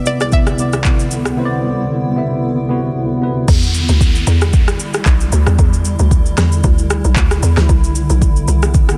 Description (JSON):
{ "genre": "amapiano", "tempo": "114 BPM", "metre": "4/4", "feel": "swing 55% on 16ths", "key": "E minor", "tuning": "A4 = 442 Hz", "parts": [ { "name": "analog pluck", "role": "melody", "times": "0.0-2.9 s", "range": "D5 to E5", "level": "-24 LUFS", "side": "equal", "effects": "chorus, delay" }, { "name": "tine electric piano", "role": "accompaniment", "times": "0.0-3.5 s", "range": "C3 to E5", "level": "-20 LUFS", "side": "equal", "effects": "lush chorus" }, { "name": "granular cloud pad", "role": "sustained chords", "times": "0.0-9.0 s", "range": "C2 to E4", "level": "-24 LUFS", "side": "equal", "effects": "built-in reverb" }, { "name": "deep house drum kit", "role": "drums", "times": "0.1-9.0 s", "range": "crash cymbal, handclaps, kick drum, rim click, shaker, snare drum", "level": "-16 LUFS", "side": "equal", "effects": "overdrive, vintage 12-bit sampler grit" }, { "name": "hollow log drum bass", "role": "bass", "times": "3.5-9.0 s", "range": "B1 to E2", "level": "-16 LUFS", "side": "equal", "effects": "none" }, { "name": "downlifter", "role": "sound effects", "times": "3.5-7.7 s", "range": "none", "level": "-28 LUFS", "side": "equal", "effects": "none" } ], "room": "little or no reverb", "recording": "dense, heavily limited modern master", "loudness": "-14 LUFS", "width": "mono", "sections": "0.0-3.5 A section; 3.5-9.0 B section", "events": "drop 3.5-9.0", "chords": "0.0 Cmaj9; 3.5 Em7; 7.7 Cmaj9", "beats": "0.32 0.85 | 1.38 1.90 2.43 2.95 | 3.48 4.01 4.53 5.06 | 5.59 6.11 6.64 7.17 | 7.69 8.22 8.74" }